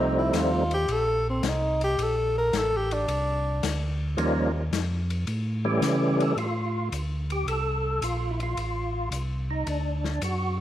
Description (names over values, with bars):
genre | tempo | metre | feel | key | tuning
soul jazz organ trio | 109 BPM | 4/4 | swing 69% on 8ths | F major, D minor from 6.4 s | A4 = 440 Hz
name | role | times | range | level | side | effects
breathy tenor saxophone | melody | 0.0-3.8 s | C4 to Bb4 | -26 LUFS | equal | slapback echo
percussive tonewheel organ | melody | 0.0-0.6, 4.2-10.6 s | E3 to A4 | -27 LUFS | right 1 dB | slow rotary speaker, overdrive, chorus vibrato, slapback echo
mellow tonewheel organ | bass | 0.0-10.6 s | A1 to C#3 | -28 LUFS | equal | chorus vibrato, slow rotary speaker
open jazz drum kit | drums | 0.3-10.4 s | hi-hat, ride cymbal, snare drum | -36 LUFS | left 7 dB | none
room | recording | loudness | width
moderate spring reverb, RT60 1.6 s, small room reverb | 1960s-style stereo | -24 LUFS | side -12 dB against mid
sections
0.0-6.4 A section; 6.4-10.6 B section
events
tenor saxophone solo 0.0-6.4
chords
0.0 F7; 2.0 Bbmaj9; 4.2 Eb9; 5.3 A7; 6.4 Dm7; 8.6 Adim; 9.7 D